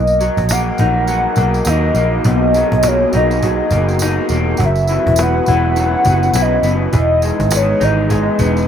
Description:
indie pop, bedroom pop; 103 BPM; 4/4; swing 60% on 16ths; B major; A4 = 441 Hz
warbly nostalgic lead; melody; 0.0-8.7 s; C#5 to F#5; -17 LUFS; equal; analog chorus
electric guitar through a small old amp; accompaniment; 0.0-8.7 s; F#2 to E4; -18 LUFS; left 2 dB; lush chorus, vibrato effect
warm analog pad; sustained chords; 0.0-8.7 s; E3 to D#5; -24 LUFS; right 2 dB; chorus
vintage muted picked electric bass; bass; 0.0-8.7 s; E1 to D#2; -17 LUFS; right 1 dB
cajon; drums; 0.1-8.6 s; -20 LUFS; equal
tambourine; percussion; 0.1-8.7 s; -28 LUFS; right 6 dB
studio ambience; rough home demo mix; -12 LUFS; side -8 dB against mid
0.0-8.7 A section
0.0 Bmaj7; 4.6 F#7sus4; 6.9 Emaj7
0.50 1.08 1.67 | 2.25 2.84 3.42 4.01 | 4.59 5.18 5.76 6.35 | 6.93 7.52 8.10

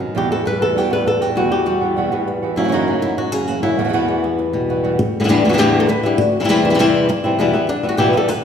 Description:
flamenco; 199 BPM; 4/4; straight; E minor; A4 = 440 Hz
flamenco guitar; melody; 0.0-8.4 s; E2 to B4; -15 LUFS; left 1 dB
flamenco guitar; stabs; 0.2-5.0 s; E2 to F#4; -22 LUFS; right 4 dB
wet recital hall reverb, RT60 1.7 s; recorded in a church or concert hall; -15 LUFS; side -8 dB against mid
0.0-5.0 A section; 5.0-8.4 B section
0.2 Emadd9; 2.6 F#7; 3.8 Emadd9; 5.0 Gadd9/E; 6.2 C/E; 7.4 Em
| 0.15 0.46 0.76 1.06 | 1.36 1.66 1.97 2.27 | 2.57 2.87 3.17 3.48 | 3.78 4.08 4.38 4.68 | 4.98 5.28 5.58 5.88 | 6.18 6.48 6.78 7.08 | 7.38 7.68 7.98 8.28

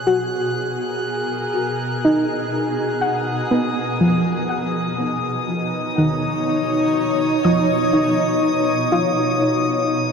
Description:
ambient; 61 BPM; 3/4; straight; A4 = 440 Hz
shimmering ambient pad; sustained chords; 0.0-10.1 s; B2 to C#5; -21 LUFS; equal; chorus, built-in reverb, shimmer reverb
soft round pluck; arpeggios; 0.0-10.1 s; D#3 to D#6; -21 LUFS; equal; chorus, diffuse ambient delay, shimmer reverb
drifting glass-harmonics texture; texture; 0.0-10.1 s; D#6 to F#6; -27 LUFS; left 3 dB; chorus, built-in reverb, shimmer reverb
wet cathedral reverb, RT60 6.9 s; in a vast, echoing space; -17 LUFS; side -6 dB against mid
0.0-10.1 A section
fade-in on ambient pad 0.0-10.1
0.0 F#add9; 8.9 G#m6 (rootless)
| 0.07 1.06 2.04 | 3.02 4.01 4.99 | 5.98 6.96 7.94 | 8.93 9.91

